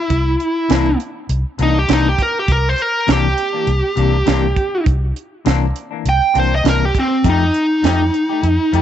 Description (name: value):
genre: straight-eighth soul blues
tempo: 101 BPM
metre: 4/4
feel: swing 54% on 16ths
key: C mixolydian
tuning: A4 = 440 Hz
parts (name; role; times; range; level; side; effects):
- smooth overdriven lead guitar; melody; 0.0-8.8 s; C4 to G5; -17 LUFS; right 1 dB; none
- vintage muted fingered electric bass; bass; 0.1-8.8 s; C2 to F2; -17 LUFS; equal; none
- tight funk drum kit; drums; 0.1-8.8 s; hi-hat, kick drum, snare drum; -19 LUFS; right 4 dB; none
- semi-hollow electric guitar; stabs; 0.7-8.8 s; C3 to G4; -22 LUFS; left 11 dB; harmonic tremolo
room: light reverb, small room ambience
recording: 1960s-style stereo, nothing above 8.0 kHz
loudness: -14 LUFS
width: side -10 dB against mid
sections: 0.0-8.8 A section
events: none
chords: 0.0 C9; 7.2 F9